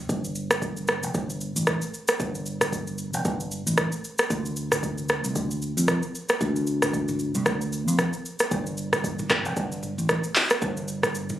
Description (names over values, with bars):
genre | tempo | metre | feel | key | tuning
afrobeats | 114 BPM | 4/4 | swing 58% on 16ths | unclear | A4 = 435 Hz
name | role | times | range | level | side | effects
fingered electric bass | bass | 0.1-11.4 s | F1 to F2 | -28 LUFS | equal | none
afro-pop drum kit | drums | 0.1-11.4 s | handclaps, hi-hat, kick drum, rim click, shaker, toms | -25 LUFS | equal | none
room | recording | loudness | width
light reverb, digital ambience | recorded on a phone in the room, club reverb, compression | -24 LUFS | side -12 dB against mid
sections
0.1-8.5 A section; 8.5-11.4 B section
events
none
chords
none